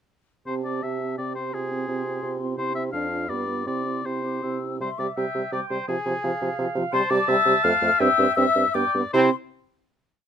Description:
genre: quick classical-period movement for wind quintet.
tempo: 151-176 BPM.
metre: 3/4.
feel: rubato.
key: C major.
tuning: A4 = 438 Hz.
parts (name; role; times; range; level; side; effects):
mellow hollow silver concert flute; melody; 0.5-9.4 s; G5 to F6; -27 LUFS; left 9 dB; none.
warm oboe; second line; 0.5-9.3 s; Ab4 to F5; -28 LUFS; left 4 dB; none.
mellow clarinet; accompaniment; 0.5-9.3 s; E4 to A5; -30 LUFS; right 6 dB; none.
warm French horn; accompaniment; 0.5-9.3 s; F3 to D4; -29 LUFS; right 2 dB; none.
mellow bassoon; bass; 0.5-9.3 s; F2 to C3; -27 LUFS; right 3 dB; none.
room: little or no reverb.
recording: close, detailed microphones.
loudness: -22 LUFS.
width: side -8 dB against mid.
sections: 0.5-4.8 A section; 4.8-9.1 A section; 9.1-10.3 final chord.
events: slowing down 6.4-9.1.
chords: 0.5 C; 1.5 Fm/C; 2.6 C; 2.9 Dm/F; 3.3 G7; 3.7 C; 5.9 Fm/C; 6.9 C; 7.6 F; 8.0 C/G; 8.8 G; 9.1 C.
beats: | 0.47 0.83 1.19 | 1.54 1.89 2.23 | 2.58 2.93 3.29 | 3.67 4.05 4.43 | 4.81 5.17 5.53 | 5.88 6.24 6.59 | 6.93 7.29 7.64 | 8.01 8.37 8.75 | 9.14.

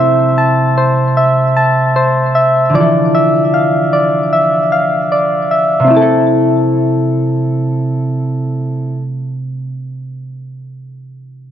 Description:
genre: hip hop.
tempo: 152 BPM.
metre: 4/4.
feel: half-time.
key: A minor.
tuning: A4 = 440 Hz.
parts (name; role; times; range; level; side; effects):
concert harp; accompaniment; 0.0-9.7 s; C3 to A4; -15 LUFS; equal; low-pass filter.
soft electric-piano-like synth keys; arpeggios; 0.0-9.0 s; C4 to A5; -13 LUFS; equal; chorus, low-pass filter, ping-pong delay.
room: moderate lush hall reverb, RT60 1.9 s.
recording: none.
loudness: -11 LUFS.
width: side -10 dB against mid.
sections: 0.0-5.9 A section; 5.9-9.1 B section.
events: none.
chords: 0.0 Am; 2.7 Dmadd9; 5.9 Am.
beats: 0.38 0.77 | 1.17 1.56 1.96 2.35 | 2.75 3.14 3.54 3.93 | 4.33 4.72 5.12 5.51 | 5.91 6.30 6.70 7.09 | 7.49 7.88 8.27 8.67.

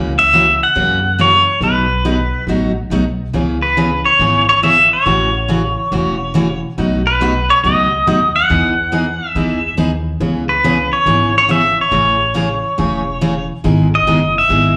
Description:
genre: country, western swing.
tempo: 140 BPM.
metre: 4/4.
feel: swing 68% on 8ths.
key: E major.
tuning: A4 = 444 Hz.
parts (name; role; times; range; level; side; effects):
picked steel-string acoustic guitar; accompaniment; 0.0-14.7 s; B2 to G#4; -20 LUFS; equal; slapback echo.
upright bass; bass; 0.0-14.8 s; E1 to F#2; -23 LUFS; equal; none.
pedal steel guitar; melody; 0.2-14.8 s; B4 to F#5; -15 LUFS; equal; none.
room: moderate club reverb, RT60 0.5 s.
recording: live gig heard through the venue's PA, club reverb.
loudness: -14 LUFS.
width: mono.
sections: 0.0-14.8 A section.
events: none.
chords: 0.0 F#7/C#; 1.6 B7; 3.3 C#m7; 5.1 A6; 6.8 B7; 8.5 Emaj9; 10.2 C#m7; 11.9 Amaj7; 13.6 Emaj7.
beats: 0.32 0.75 1.18 | 1.61 2.04 2.47 2.90 | 3.33 3.76 4.19 4.62 | 5.05 5.48 5.91 6.34 | 6.77 7.20 7.63 8.06 | 8.49 8.92 9.35 9.78 | 10.21 10.64 11.07 11.49 | 11.92 12.35 12.78 13.21 | 13.64 14.06 14.49.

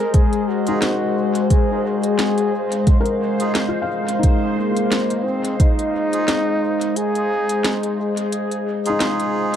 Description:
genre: ambient dub.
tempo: 88 BPM.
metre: 4/4.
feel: swing 56% on 16ths.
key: unclear.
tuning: A4 = 440 Hz.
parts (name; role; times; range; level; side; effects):
mellow trombone; melody; 0.0-8.3 s; Bb3 to Bb4; -24 LUFS; right 1 dB; dub echo.
warbly tape-like pad; sustained chords; 0.0-9.6 s; Ab3 to F5; -22 LUFS; left 2 dB; chorus, built-in reverb.
bubbling stepped-filter texture; texture; 0.2-9.6 s; C5; -31 LUFS; left 1 dB; chorus, built-in reverb.
electronic kick drum; drums; 0.1-5.7 s; none; -15 LUFS; equal; none.
organic electronic drum kit; drums; 0.1-9.6 s; hi-hat, snare drum; -25 LUFS; equal; dub echo.
felt-muted upright piano; arpeggios; 0.7-9.6 s; Eb4 to F5; -29 LUFS; left 3 dB; dub echo.
melodica; stabs; 0.7-9.6 s; Eb4 to Ab4; -29 LUFS; right 2 dB; dub echo.
room: moderate spring reverb, RT60 2.4 s.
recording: dark, warm production.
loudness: -17 LUFS.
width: side -9 dB against mid.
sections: 0.0-9.6 A section.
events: kick drops out 7.0-9.6.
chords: 0.0 Fm7/Ab.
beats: 0.14 0.82 | 1.50 2.19 2.87 3.55 | 4.23 4.91 5.60 6.28 | 6.96 7.64 8.32 9.01.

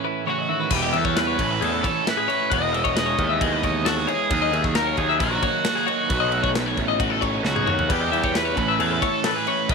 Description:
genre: math rock and midwest emo.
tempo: 134 BPM.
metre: 4/4.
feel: straight.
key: A lydian.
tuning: A4 = 439 Hz.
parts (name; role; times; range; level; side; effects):
twelve-string electric guitar; accompaniment; 0.0-2.5 s; A2 to E4; -33 LUFS; right 14 dB; none.
twelve-string electric guitar; arpeggios; 0.0-9.7 s; F#4 to E5; -25 LUFS; left 16 dB; harmonic tremolo.
crunchy overdriven guitar; riff; 0.0-9.7 s; A2 to E4; -27 LUFS; right 15 dB; none.
overdriven electric guitar; melody; 0.3-9.7 s; F#4 to D#5; -25 LUFS; right 3 dB; none.
fuzz picked electric bass; bass; 0.7-9.7 s; E1 to E2; -26 LUFS; equal; overdrive.
modern studio drum kit; drums; 0.7-9.7 s; crash cymbal, kick drum, snare drum, splash cymbal, toms; -27 LUFS; equal; none.
room: studio ambience.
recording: 1960s-style stereo with parts hard left and right.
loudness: -19 LUFS.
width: side -4 dB against mid.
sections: 0.7-9.7 A section.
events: break 0.0-0.7; drum fill 7.4-7.9.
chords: 0.0 A69; 0.7 Em; 1.4 Amaj9; 2.5 Emaj7; 4.3 D#m7; 6.1 B9; 7.9 Em; 8.6 Amaj9.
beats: 0.26 | 0.71 1.16 1.61 2.06 | 2.51 2.96 3.41 3.86 | 4.31 4.75 5.20 5.65 | 6.10 6.55 7.00 7.45 | 7.90 8.35 8.80 9.25 | 9.70.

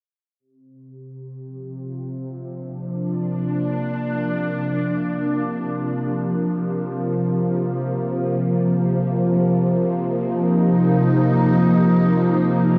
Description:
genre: ambient.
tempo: free time.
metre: none.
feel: none.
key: Bb major.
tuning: A4 = 441 Hz.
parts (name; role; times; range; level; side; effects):
evolving wavetable pad; solo; 1.0-12.8 s; C3 to Eb4; -21 LUFS; equal; ensemble chorus, built-in reverb, cassette tape, analog delay.
room: wet studio reverb, RT60 0.6 s.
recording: home recording on cassette.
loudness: -21 LUFS.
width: mono.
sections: 0.4-12.8 A section.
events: none.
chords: 0.4 Bb; 7.3 Cm.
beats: free time.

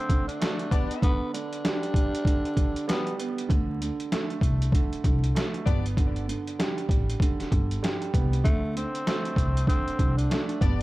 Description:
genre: hip hop, boom-bap hip-hop.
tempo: 97 BPM.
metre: 4/4.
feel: swing 60% on 16ths.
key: unclear.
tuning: A4 = 440 Hz.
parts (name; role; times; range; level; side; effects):
growling tenor saxophone; melody; 0.0-3.2, 8.4-10.8 s; A3 to D4; -32 LUFS; left 1 dB; high-pass filter, low-pass filter, analog delay.
warm grand piano; accompaniment; 0.0-10.8 s; D3 to B3; -32 LUFS; right 5 dB; cassette tape, high-pass filter, low-pass filter.
trip hop sampler-style drum kit; drums; 0.1-10.8 s; hi-hat, kick drum, snare drum; -25 LUFS; equal; overdrive.
mellow horn section; stabs; 0.7-1.1, 5.7-5.9, 10.6-10.8 s; B3 to D5; -38 LUFS; left 9 dB; high-pass filter, low-pass filter, analog delay.
upright bass; bass; 3.5-10.8 s; G1 to D2; -28 LUFS; equal; none.
room: little or no reverb.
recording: dark, warm production, vinyl crackle.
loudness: -24 LUFS.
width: side -18 dB against mid.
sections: 0.0-10.8 A section.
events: break 0.0-3.5.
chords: 0.0 D5; 0.7 G; 3.5 D5; 5.7 G; 8.4 D5.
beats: 0.41 | 1.02 1.64 2.26 2.88 | 3.50 4.12 4.74 5.35 | 5.97 6.59 7.21 7.83 | 8.45 9.07 9.68 10.30.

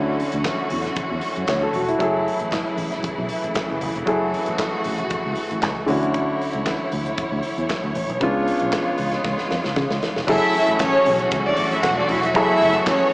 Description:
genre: disco.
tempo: 116 BPM.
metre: 4/4.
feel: straight.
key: F# minor.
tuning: A4 = 438 Hz.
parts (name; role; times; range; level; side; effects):
warm concert grand piano; accompaniment; 0.0-13.1 s; C#3 to C#5; -23 LUFS; equal; slapback echo.
clear studio string section; sustained chords; 0.0-13.1 s; C#3 to C#5; -25 LUFS; equal; none.
fingered electric bass; bass; 0.0-12.8 s; E1 to C#3; -28 LUFS; equal; none.
modern studio drum kit; drums; 0.2-13.0 s; crash cymbal, handclaps, hi-hat, kick drum, snare drum; -28 LUFS; equal; none.
congas; percussion; 0.2-13.0 s; none; -35 LUFS; left 1 dB; none.
rich studio violin section; second line; 10.3-13.1 s; C#4 to F#5; -18 LUFS; equal; none.
room: light reverb, studio ambience.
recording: live gig heard through the venue's PA, club reverb, small speaker sound.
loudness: -19 LUFS.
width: side -24 dB against mid.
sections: 0.0-10.3 A section; 10.3-13.1 B section.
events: drum fill 9.2-10.3.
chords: 0.0 Dmaj9; 2.0 F#m9; 5.9 Dmaj9; 8.2 C#7b9; 10.3 F#m9.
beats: 0.45 0.96 1.48 | 2.00 2.52 3.04 3.55 | 4.07 4.59 5.11 5.62 | 6.14 6.66 7.18 7.70 | 8.21 8.73 9.25 9.77 | 10.28 10.80 11.32 11.84 | 12.35 12.87.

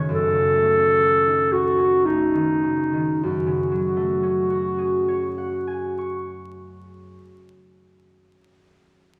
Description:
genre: classical, impressionist duo for clarinet and harp.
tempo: 48-69 BPM.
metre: 3/4.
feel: rubato.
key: F# dorian.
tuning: A4 = 441 Hz.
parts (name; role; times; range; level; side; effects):
concert harp; accompaniment; 0.0-8.3 s; F#2 to C#6; -29 LUFS; equal; none.
warm clarinet; melody; 0.1-6.3 s; D#4 to A4; -22 LUFS; equal; none.
room: wet recital hall reverb, RT60 1.8 s.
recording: vinyl crackle.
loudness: -21 LUFS.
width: mono.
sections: 0.0-3.2 A section; 3.2-6.8 B section.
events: slowing down 0.0-3.2.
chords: 0.0 F#m6; 3.2 F#madd9.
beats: | 0.10 1.02 2.05 | 3.24 4.44 5.64.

